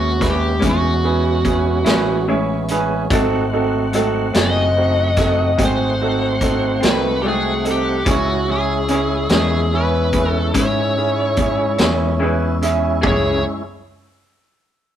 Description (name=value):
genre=slow blues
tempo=48 BPM (dotted quarters)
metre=12/8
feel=straight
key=C# minor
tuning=A4 = 440 Hz
part: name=smooth overdriven lead guitar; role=melody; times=0.0-13.4 s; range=F#4 to D#5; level=-21 LUFS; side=equal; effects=none
part: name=bright grand piano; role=accompaniment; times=0.0-13.4 s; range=G#3 to G#5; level=-22 LUFS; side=right 4 dB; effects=none
part: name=tonewheel organ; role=sustained chords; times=0.0-13.6 s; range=G#3 to F#5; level=-25 LUFS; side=right 1 dB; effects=slow rotary speaker, overdrive, chorus vibrato
part: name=fingered electric bass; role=bass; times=0.0-13.4 s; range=F#1 to G#2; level=-22 LUFS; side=left 1 dB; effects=none
part: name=vintage drum kit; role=drums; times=0.2-13.2 s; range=hi-hat, kick drum, snare drum, toms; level=-21 LUFS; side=equal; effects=none
part: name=electric guitar through a small old amp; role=accompaniment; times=0.6-13.4 s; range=G#2 to E4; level=-23 LUFS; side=left 2 dB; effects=tremolo
part: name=electric slide guitar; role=second line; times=13.0-13.4 s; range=G#4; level=-23 LUFS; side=equal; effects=none
room=light reverb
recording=rough rehearsal-room recording, tube saturation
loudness=-15 LUFS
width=side -10 dB against mid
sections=0.0-13.0 A section; 13.0-15.0 B section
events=grand piano fill 1.9-3.1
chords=0.0 Amaj7; 3.1 G#7b9; 8.1 C#m